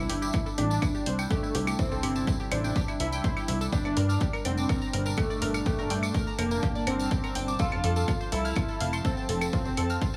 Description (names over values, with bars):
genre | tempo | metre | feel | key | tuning
melodic techno | 124 BPM | 4/4 | straight | G dorian | A4 = 440 Hz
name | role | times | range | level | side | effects
analog synth brass | melody | 0.0-10.2 s | A3 to F4 | -36 LUFS | equal | chorus, sidechain pumping, tape echo
dark detuned synth bell | second line | 0.0-10.2 s | A4 to F5 | -42 LUFS | equal | chorus, sidechain pumping, tape echo
evolving wavetable pad | sustained chords | 0.0-10.2 s | Bb2 to A5 | -38 LUFS | equal | chorus, built-in reverb, sidechain pumping
analog pluck | arpeggios | 0.0-10.2 s | E4 to Bb6 | -38 LUFS | equal | chorus, sidechain pumping, tape echo
plucky analog bass | bass | 0.0-10.0 s | F1 to G2 | -32 LUFS | equal | sidechain pumping
electronic hi-hat and claves | drums | 0.1-9.9 s | none | -37 LUFS | equal | none
tambourine | percussion | 0.2-10.2 s | none | -44 LUFS | equal | none
electronic kick drum | drums | 0.3-10.1 s | none | -32 LUFS | equal | none
room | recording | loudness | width
light reverb, digital ambience | none | -28 LUFS | mono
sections
0.0-10.2 A section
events
none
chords
0.0 C6; 3.7 Gm; 7.6 F